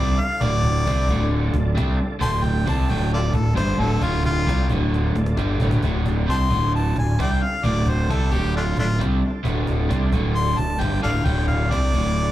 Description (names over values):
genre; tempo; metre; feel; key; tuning
blues rock power trio and southern rock; 133 BPM; 4/4; straight; D minor; A4 = 438 Hz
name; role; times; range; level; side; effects
clear harmonica; melody; 0.0-12.3 s; A3 to C6; -25 LUFS; left 2 dB; overdrive, slapback echo
overdriven tonewheel organ; sustained chords; 0.0-12.3 s; G3 to D5; -35 LUFS; right 3 dB; none
overdriven electric guitar; riff; 0.0-12.3 s; D2 to C4; -26 LUFS; right 1 dB; slapback echo
fuzz fingered electric bass; bass; 0.0-12.3 s; D1 to C2; -21 LUFS; equal; overdrive
cajon; drums; 0.4-12.0 s; none; -27 LUFS; equal; none
room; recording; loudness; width
little or no reverb; live gig heard through the venue's PA, club reverb; -18 LUFS; side -14 dB against mid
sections
0.0-5.8 A section; 5.8-12.3 A section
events
harmonica solo 0.0-12.3; drum fill 4.9-5.8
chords
0.0 Dm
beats
| 0.41 0.86 1.31 1.77 | 2.22 2.67 3.12 3.57 | 4.02 4.48 4.93 5.38 | 5.83 6.29 6.74 7.19 | 7.64 8.10 8.55 9.00 | 9.45 9.90 10.36 10.81 | 11.26 11.71 12.16